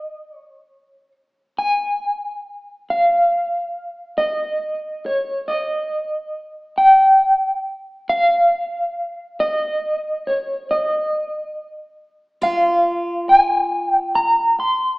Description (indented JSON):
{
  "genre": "folk",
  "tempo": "46 BPM (dotted quarters)",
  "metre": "6/8",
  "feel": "straight",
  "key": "unclear",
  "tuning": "A4 = 435 Hz",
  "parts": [
    { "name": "electric guitar through a small old amp", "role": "melody", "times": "0.0-15.0 s", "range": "Db5 to C6", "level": "-16 LUFS", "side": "equal", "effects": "tremolo" },
    { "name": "picked steel-string acoustic guitar", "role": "arpeggios", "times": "12.4-14.3 s", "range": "F4", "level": "-26 LUFS", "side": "equal", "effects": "none" }
  ],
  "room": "wet recital hall reverb, RT60 1.4 s",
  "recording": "small speaker sound",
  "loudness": "-16 LUFS",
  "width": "side -23 dB against mid",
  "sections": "0.0-1.6 A section; 1.6-15.0 B section",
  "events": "none",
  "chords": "none"
}